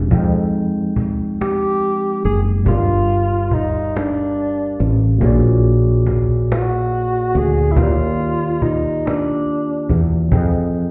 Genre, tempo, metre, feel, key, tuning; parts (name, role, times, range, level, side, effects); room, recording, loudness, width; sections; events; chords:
slow six-eight R&B; 47 BPM (dotted quarters); 6/8; straight; F dorian; A4 = 439 Hz
barky tine electric piano; accompaniment; 0.0-10.9 s; Bb2 to G5; -23 LUFS; equal; phaser
woody fretless electric bass; bass; 0.0-10.9 s; Gb1 to F2; -21 LUFS; equal; lush chorus
cajon; drums; 0.1-10.9 s; -24 LUFS; equal
mellow tenor saxophone; melody; 1.4-10.0 s; D4 to Ab4; -22 LUFS; equal; slapback echo, plate reverb
moderate studio reverb, RT60 0.8 s; heard muffled through a wall, stone room reverb, EQ, nothing above 7.5 kHz; -17 LUFS; mono
0.1-10.9 A section
0.1 Fm9; 2.7 Gm7; 5.2 Bb7alt; 7.8 Ebmaj7; 10.3 Fm9